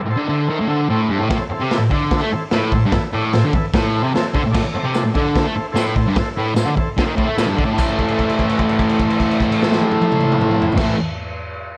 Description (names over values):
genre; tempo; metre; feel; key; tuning
garage rock duo or trio; 148 BPM; 4/4; straight; A minor; A4 = 440 Hz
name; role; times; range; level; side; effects
combo organ; sustained chords; 0.0-11.0 s; E4 to D5; -29 LUFS; equal; lush chorus
fuzz guitar; riff; 0.1-11.0 s; G2 to A3; -20 LUFS; equal; distortion
raw garage drum kit; drums; 1.3-10.9 s; crash cymbal, hi-hat, kick drum, snare drum, toms; -23 LUFS; equal; vintage 12-bit sampler grit
tambourine; percussion; 4.9-8.0 s; none; -39 LUFS; equal; none
room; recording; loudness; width
light reverb, small room ambience; cassette tape, faint mains hum; -18 LUFS; mono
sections
0.0-1.3 A section; 1.3-7.8 B section; 7.8-11.0 C section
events
break 0.0-1.3; held note 7.8-10.8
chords
0.0 Am